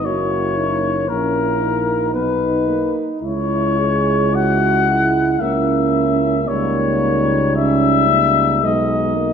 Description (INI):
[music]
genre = classical, hymn-like piece for brass band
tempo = 56 BPM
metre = 3/4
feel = rubato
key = unclear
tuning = A4 = 442 Hz
[part]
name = mellow cornet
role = melody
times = 0.0-9.3 s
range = A#4 to F#5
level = -19 LUFS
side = left 6 dB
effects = none
[part]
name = mellow French horn section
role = second line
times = 0.0-9.3 s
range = A#3 to G#4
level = -22 LUFS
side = right 7 dB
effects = none
[part]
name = clear trombone section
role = accompaniment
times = 0.0-9.3 s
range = D#4 to E4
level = -25 LUFS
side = left 1 dB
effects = none
[part]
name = warm euphonium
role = accompaniment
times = 0.0-9.3 s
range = G3 to B3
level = -24 LUFS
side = right 3 dB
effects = none
[part]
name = mellow tuba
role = bass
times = 0.0-9.3 s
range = F#1 to C#2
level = -22 LUFS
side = right 1 dB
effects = none
[sound]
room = wet scoring stage reverb, RT60 1.4 s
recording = none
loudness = -15 LUFS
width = side -7 dB against mid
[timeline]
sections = 0.0-9.3 A section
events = none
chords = 0.1 F#7; 2.1 B; 3.2 C#m; 5.4 A#dim/C#; 6.5 D#7/C#; 8.6 G#m/B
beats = | 0.07 1.10 2.15 | 3.23 4.36 5.42 | 6.49 7.57 8.64